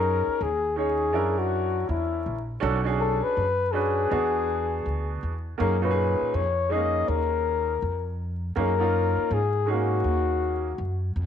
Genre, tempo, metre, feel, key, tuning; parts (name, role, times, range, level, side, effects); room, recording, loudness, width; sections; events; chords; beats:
hip hop, jazz-hop; 81 BPM; 4/4; swing 63% on 16ths; F# major; A4 = 441 Hz
breathy flugelhorn; melody; 0.0-11.2 s; E4 to D#5; -26 LUFS; left 6 dB
clear grand piano; accompaniment; 0.0-10.7 s; A#2 to C#5; -29 LUFS; right 8 dB
upright bass; bass; 0.0-11.3 s; A#1 to G#2; -28 LUFS; equal
light reverb, small room ambience; 1960s-style stereo with parts hard left and right, vinyl crackle; -23 LUFS; side -8 dB against mid
0.0-11.3 A section
0.0 F#69; 1.1 F#7b13; 2.6 Bm; 4.1 E9; 5.6 F#69
0.41 1.15 1.89 | 2.63 3.37 4.11 4.85 | 5.59 6.33 7.07 7.82 | 8.55 9.30 10.04 10.78